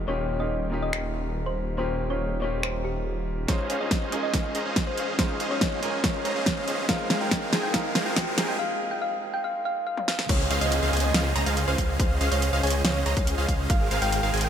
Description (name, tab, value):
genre	future bass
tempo	141 BPM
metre	4/4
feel	half-time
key	unclear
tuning	A4 = 440 Hz
part	warm concert grand piano	accompaniment	0.0-10.3 s	Ab3 to C5	-33 LUFS	right 1 dB	sidechain pumping, ping-pong delay
part	wide detuned saw bass	bass	0.0-14.5 s	Eb1 to Db2	-29 LUFS	equal	chorus, sidechain pumping, high-pass filter
part	thumb-piano-like synth pluck	melody	0.1-14.5 s	G4 to G5	-31 LUFS	left 1 dB	chorus, sidechain pumping, ping-pong delay
part	pop drum kit	drums	0.9-14.5 s	crash cymbal, finger snaps, hi-hat, snare drum, toms	-28 LUFS	equal	none
part	supersaw chords	riff	3.5-14.5 s	Ab3 to Bb5	-30 LUFS	right 1 dB	sidechain pumping, low-pass filter
part	electronic kick drum	drums	3.5-13.8 s	none	-27 LUFS	equal	none
part	riser and downlifter	sound effects	5.1-13.7 s	none	-36 LUFS	equal	none
part	wide unison pluck	arpeggios	10.3-14.5 s	F5 to Bb5	-33 LUFS	right 1 dB	sidechain pumping
room	light reverb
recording	high-pass filter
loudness	-23 LUFS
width	side -9 dB against mid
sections	0.0-3.5 A section; 3.5-10.3 B section; 10.3-14.5 C section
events	build-up 3.5-10.3; drum fill 3.5-8.6, 10.0-10.3; riser 5.1-8.6; break 8.6-10.3; drop 10.3-14.5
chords	0.1 Eb7; 3.5 Dbmaj7; 6.9 Ab6; 10.3 Dbmaj7; 13.7 Ab6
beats	| 0.08 0.51 0.93 1.36 | 1.78 2.21 2.63 3.06 | 3.48 3.91 4.34 4.76 | 5.19 5.61 6.04 6.46 | 6.89 7.32 7.74 8.17 | 8.59 9.02 9.44 9.87 | 10.29 10.72 11.14 11.57 | 11.99 12.42 12.85 13.27 | 13.70 14.12